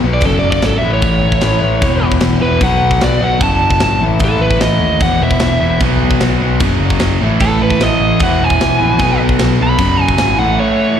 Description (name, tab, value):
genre	punk rock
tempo	150 BPM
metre	4/4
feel	straight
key	unclear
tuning	A4 = 440 Hz
part	raw garage guitar	riff	0.0-11.0 s	E2 to B3	-16 LUFS	left 6 dB	overdrive, slapback echo
part	picked electric bass	bass	0.0-10.6 s	E1 to D#2	-16 LUFS	equal	none
part	biting lead guitar	melody	0.1-11.0 s	A4 to B5	-16 LUFS	right 2 dB	overdrive, slapback echo
part	tight metal drum kit	drums	0.2-10.3 s	crash cymbal, kick drum, snare drum	-18 LUFS	equal	none
part	distorted electric guitar	riff	5.8-11.0 s	E2 to B3	-19 LUFS	right 15 dB	distortion, slapback echo
room	small room ambience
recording	live gig heard through the venue's PA, recital hall reverb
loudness	-10 LUFS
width	side -9 dB against mid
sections	0.0-11.0 A section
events	lead electric guitar solo 0.0-11.0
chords	0.2 F#5; 0.8 A; 1.8 E5; 2.6 B5; 3.4 F#5; 4.0 A5; 5.0 E5; 5.8 B5; 6.6 F#5; 7.2 A5; 8.2 E; 9.0 B5; 9.8 F#5; 10.4 A